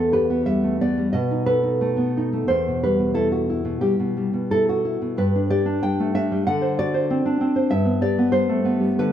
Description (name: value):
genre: romantic piece for solo classical guitar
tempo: 91 BPM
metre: 4/4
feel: rubato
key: E minor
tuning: A4 = 440 Hz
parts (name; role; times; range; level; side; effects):
- nylon-string guitar; solo; 0.0-9.1 s; E2 to G5; -19 LUFS; equal; none
room: moderate recital hall reverb, RT60 1.7 s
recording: none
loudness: -19 LUFS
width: side -10 dB against mid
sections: 0.0-9.1 A section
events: none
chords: 0.0 Em; 1.2 B7; 2.5 Em; 5.1 G5; 6.4 D7; 7.7 G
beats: 0.47 1.15 1.82 | 2.49 3.15 3.81 4.48 | 5.14 5.80 6.44 7.07 | 7.71 8.35 8.99